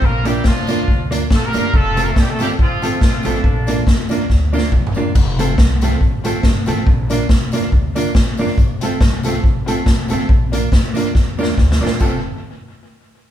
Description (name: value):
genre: ska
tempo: 140 BPM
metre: 4/4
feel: swing 55% on 8ths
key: F major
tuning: A4 = 438 Hz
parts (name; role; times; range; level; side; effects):
- clear horn section; melody; 0.0-3.9 s; D3 to Bb4; -22 LUFS; right 1 dB; none
- upright bass; bass; 0.0-12.2 s; F1 to F2; -22 LUFS; equal; none
- street-band drum kit; drums; 0.0-12.1 s; crash cymbal, hi-hat, kick drum, snare drum, toms; -15 LUFS; equal; none
- mellow electric guitar; accompaniment; 0.2-12.2 s; A3 to F4; -23 LUFS; right 3 dB; none
- clear upright piano; stabs; 0.3-12.2 s; C4 to Bb4; -25 LUFS; left 1 dB; none
- tambourine; percussion; 0.3-12.2 s; none; -41 LUFS; left 3 dB; none
room: moderate large studio reverb, RT60 0.9 s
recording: band playing live in one room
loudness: -13 LUFS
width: side -11 dB against mid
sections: 0.0-5.2 A section; 5.2-12.0 B section; 12.0-13.3 C section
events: drum fill 4.3-5.2, 11.1-12.0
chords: 0.0 Bb; 1.7 F; 3.4 Bb; 5.2 F; 6.9 Bb; 8.6 F; 10.3 Bb; 12.0 F